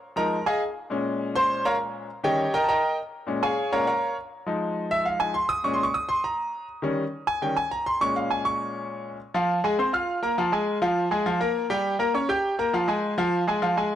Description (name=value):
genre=latin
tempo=203 BPM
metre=4/4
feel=straight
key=F minor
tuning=A4 = 441 Hz
part: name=bright grand piano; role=solo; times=0.2-14.0 s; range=Bb2 to G6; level=-23 LUFS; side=equal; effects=none
room=light reverb, studio ambience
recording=dry, gritty hardware recording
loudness=-23 LUFS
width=side -11 dB against mid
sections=0.0-9.2 A section; 9.2-14.0 B section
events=grand piano solo 0.0-9.2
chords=0.0 Fm7; 0.9 Bbm7; 2.1 Eb7; 3.3 Bbm7; 4.5 Fm7; 5.6 Bbm7; 6.8 Eb7; 8.0 Bbm7; 9.2 Fm; 10.4 Bb5; 11.6 Gdim; 12.7 Fm